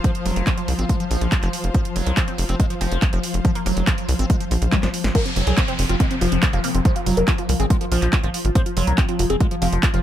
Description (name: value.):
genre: psychedelic trance.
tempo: 141 BPM.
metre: 4/4.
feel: straight.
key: F phrygian.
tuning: A4 = 441 Hz.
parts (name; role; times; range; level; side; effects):
swarming drone; sustained chords; 0.0-10.0 s; F3; -29 LUFS; left 2 dB; built-in reverb, vintage 12-bit sampler grit, sidechain pumping.
liquid acid bass; riff; 0.0-10.0 s; F3 to C4; -28 LUFS; moving between left 3 dB and right 4 dB; phaser, auto-pan, cassette tape, sidechain pumping, digital delay.
electronic kick drum; drums; 0.0-9.9 s; none; -19 LUFS; equal; none.
techno drum kit; drums; 0.0-10.0 s; crash cymbal, handclaps, hi-hat, snare drum, toms; -27 LUFS; right 1 dB; none.
clear symphonic string section; texture; 0.0-5.2 s; F4 to F5; -33 LUFS; left 3 dB; sidechain pumping.
tight sequencer bass; bass; 0.3-10.0 s; F1 to C2; -21 LUFS; equal; none.
resonant blip pluck; second line; 0.5-9.8 s; F3 to C4; -36 LUFS; right 2 dB; none.
wide unison lead; melody; 5.1-10.0 s; C4 to C5; -25 LUFS; equal; phaser, sidechain pumping, digital delay.
downlifter; sound effects; 5.2-8.6 s; none; -32 LUFS; equal; none.
room: little or no reverb.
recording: none.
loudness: -18 LUFS.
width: side -11 dB against mid.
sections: 0.0-5.2 A section; 5.2-10.0 B section.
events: drum fill 4.7-5.2; drop 5.2-10.0.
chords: 0.0 F5.